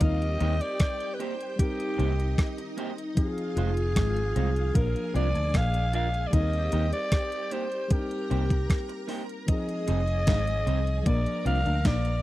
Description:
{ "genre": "lovers rock reggae", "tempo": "76 BPM", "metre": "4/4", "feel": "straight", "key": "F dorian", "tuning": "A4 = 443 Hz", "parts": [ { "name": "breathy alto saxophone", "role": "melody", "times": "0.0-12.2 s", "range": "G4 to F5", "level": "-31 LUFS", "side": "equal", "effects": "tape echo" }, { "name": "string machine, full ensemble", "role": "second line", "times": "0.0-12.2 s", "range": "Eb4 to Bb5", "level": "-38 LUFS", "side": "right 1 dB", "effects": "ensemble chorus" }, { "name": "tine electric piano", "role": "accompaniment", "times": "0.0-12.2 s", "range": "F3 to Bb4", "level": "-36 LUFS", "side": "left 2 dB", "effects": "none" }, { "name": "electric guitar through a small old amp", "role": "riff", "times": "0.0-12.1 s", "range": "F3 to Eb4", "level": "-36 LUFS", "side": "left 6 dB", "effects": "slapback echo" }, { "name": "vintage muted fingered electric bass", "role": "bass", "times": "0.0-12.2 s", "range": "F1 to Eb2", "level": "-26 LUFS", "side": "equal", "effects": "none" }, { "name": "gated 80s digital drum machine", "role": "drums", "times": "0.0-12.2 s", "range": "hi-hat, kick drum, rim click, snare drum", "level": "-25 LUFS", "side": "equal", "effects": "gated reverb, gated reverb snare, overdrive" }, { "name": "electric guitar through a small old amp", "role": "stabs", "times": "0.4-12.1 s", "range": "Ab3 to D5", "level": "-34 LUFS", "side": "right 5 dB", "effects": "none" } ], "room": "little or no reverb", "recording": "dry, close 1970s-style studio recording", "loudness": "-24 LUFS", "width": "side -16 dB against mid", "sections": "0.0-12.2 A section", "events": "none", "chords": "0.0 Eb6; 1.6 Cm7; 3.2 Fm7; 4.8 Bb; 6.3 Eb6; 7.9 Cm7; 9.5 Fm7; 11.1 Bb" }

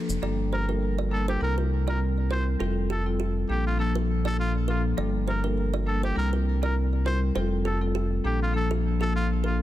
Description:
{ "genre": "afrobeats", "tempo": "101 BPM", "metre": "4/4", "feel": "swing 55% on 16ths", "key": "unclear", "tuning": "A4 = 440 Hz", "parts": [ { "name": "marimba with medium mallets", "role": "accompaniment", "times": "0.0-9.6 s", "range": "F3 to Bb4", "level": "-29 LUFS", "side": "left 3 dB", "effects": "none" }, { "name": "round analog bass", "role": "bass", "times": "0.1-9.6 s", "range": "F1 to C2", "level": "-26 LUFS", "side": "equal", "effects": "none" }, { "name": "kalimba", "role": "riff", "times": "0.2-9.5 s", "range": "G4 to D5", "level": "-36 LUFS", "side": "right 6 dB", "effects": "digital delay" }, { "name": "bright trumpet", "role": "melody", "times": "0.5-9.6 s", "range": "F4 to C5", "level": "-33 LUFS", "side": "equal", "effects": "digital delay" } ], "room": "small room ambience", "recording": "dense, heavily limited modern master", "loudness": "-24 LUFS", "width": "side -14 dB against mid", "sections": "0.2-9.6 A section", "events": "none", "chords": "0.2 Gmadd9; 1.4 C7; 2.6 Fadd9; 3.5 Bbmaj7; 5.0 Gmadd9; 6.2 C7; 7.4 Fadd9; 8.2 Bbmaj7" }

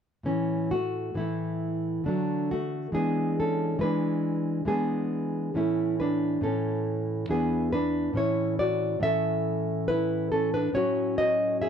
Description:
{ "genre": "classical, baroque-style dance for nylon-string guitar", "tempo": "69 BPM", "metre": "3/4", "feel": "rubato", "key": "A major", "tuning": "A4 = 440 Hz", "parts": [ { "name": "nylon-string guitar", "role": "solo", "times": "0.2-11.7 s", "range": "E2 to E5", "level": "-25 LUFS", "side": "equal", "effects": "none" } ], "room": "light reverb", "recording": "dry, close 1970s-style studio recording", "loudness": "-25 LUFS", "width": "side -7 dB against mid", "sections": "0.3-11.7 A section", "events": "none", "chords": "0.3 A5; 2.1 D; 3.0 E7; 5.6 A; 7.3 E7; 8.2 A; 10.7 F#m/A" }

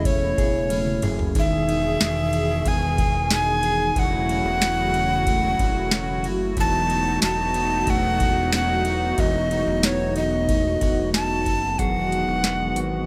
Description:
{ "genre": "dream pop", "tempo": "92 BPM", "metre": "4/4", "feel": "straight", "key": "E major", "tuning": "A4 = 442 Hz", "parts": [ { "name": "breathy tenor recorder", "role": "melody", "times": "0.0-12.8 s", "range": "C#5 to A5", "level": "-26 LUFS", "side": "equal", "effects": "delay" }, { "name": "hollow soft pad", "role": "sustained chords", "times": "0.0-13.1 s", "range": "B2 to G#4", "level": "-30 LUFS", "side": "equal", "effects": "chorus" }, { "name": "mellow electric guitar", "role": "arpeggios", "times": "0.0-13.1 s", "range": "D#3 to G#4", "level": "-30 LUFS", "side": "equal", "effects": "analog chorus, delay" }, { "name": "fat analog bass", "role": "bass", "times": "0.0-13.1 s", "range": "E1 to G#1", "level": "-30 LUFS", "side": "equal", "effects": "none" }, { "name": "booming analog drum machine", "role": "drums", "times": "0.0-12.9 s", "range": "hi-hat, kick drum, ride cymbal, snare drum, tambourine, toms", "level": "-27 LUFS", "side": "equal", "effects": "none" } ], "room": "light reverb", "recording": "none", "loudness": "-22 LUFS", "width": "mono", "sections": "0.0-11.8 A section; 11.8-13.1 B section", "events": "drum fill 0.7-1.4", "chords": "0.0 Amaj7/E; 1.4 Emaj7; 4.0 F#m7/E; 6.6 B7/E; 11.8 Emaj9" }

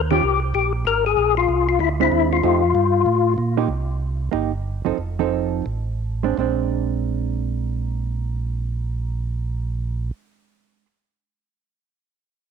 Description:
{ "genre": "soul jazz organ trio", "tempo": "161-190 BPM", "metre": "4/4", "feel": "swing 63% on 8ths", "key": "Bb mixolydian", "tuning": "A4 = 440 Hz", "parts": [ { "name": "mellow tonewheel organ", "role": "bass", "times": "0.0-10.1 s", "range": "F1 to Bb2", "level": "-23 LUFS", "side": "right 2 dB", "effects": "slow rotary speaker" }, { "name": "percussive tonewheel organ", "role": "melody", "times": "0.1-3.3 s", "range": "E4 to Bb4", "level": "-18 LUFS", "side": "left 10 dB", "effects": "slow rotary speaker, chorus vibrato, tape echo" }, { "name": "hollow-body jazz guitar", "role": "accompaniment", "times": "0.1-10.9 s", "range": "Eb3 to A4", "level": "-24 LUFS", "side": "right 16 dB", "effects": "none" } ], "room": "moderate spring reverb, RT60 1.9 s", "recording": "1960s-style stereo with parts hard left and right", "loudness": "-19 LUFS", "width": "side -6 dB against mid", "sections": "0.0-3.7 A section; 3.7-6.4 B section; 6.4-9.4 C section", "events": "slowing down 3.7-6.4", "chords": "0.0 Eb; 1.2 Bb9; 2.4 F9; 3.7 Cm7; 5.0 F7; 6.4 Bb9" }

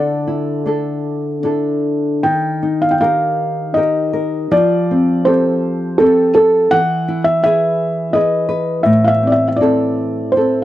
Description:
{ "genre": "celtic folk, Celtic slow air", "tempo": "74-86 BPM", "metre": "3/4", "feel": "rubato", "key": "unclear", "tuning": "A4 = 440 Hz", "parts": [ { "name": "felt-muted upright piano", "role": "melody", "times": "0.0-10.6 s", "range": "A4 to G5", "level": "-15 LUFS", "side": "equal", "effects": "none" }, { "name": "nylon-string guitar", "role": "accompaniment", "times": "0.0-10.6 s", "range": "A2 to B4", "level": "-16 LUFS", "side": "equal", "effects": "none" } ], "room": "little or no reverb", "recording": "dry, close 1970s-style studio recording", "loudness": "-13 LUFS", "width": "side -13 dB against mid", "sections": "0.0-2.2 A section; 2.2-10.6 B section", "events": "none", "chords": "0.0 Dsus2; 2.2 Eb; 4.5 Fadd9; 6.7 E; 8.8 Am" }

